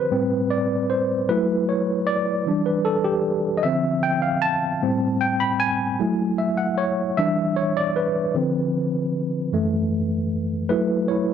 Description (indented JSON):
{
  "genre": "R&B",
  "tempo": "51 BPM (dotted quarters)",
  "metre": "6/8",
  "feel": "straight",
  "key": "F# phrygian",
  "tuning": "A4 = 439 Hz",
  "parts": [
    { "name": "tine electric piano", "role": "solo", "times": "0.0-11.3 s", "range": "F#2 to B5", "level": "-20 LUFS", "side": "equal", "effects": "overdrive, fast stereo tremolo" }
  ],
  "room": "digital ambience",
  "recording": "dry, close 1970s-style studio recording",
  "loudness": "-20 LUFS",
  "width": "side -8 dB against mid",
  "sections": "0.0-10.7 A section",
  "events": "tine electric piano solo 0.0-10.7",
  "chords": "0.1 Am7; 1.3 F#m7; 2.5 Em7; 3.6 Dm7; 4.8 Am7; 6.0 F#m7; 7.2 Em7; 8.3 Dm7; 9.5 F#m7",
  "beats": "0.11 | 1.28 2.46 | 3.64 4.81 | 5.99 7.17 | 8.34 9.52 | 10.70"
}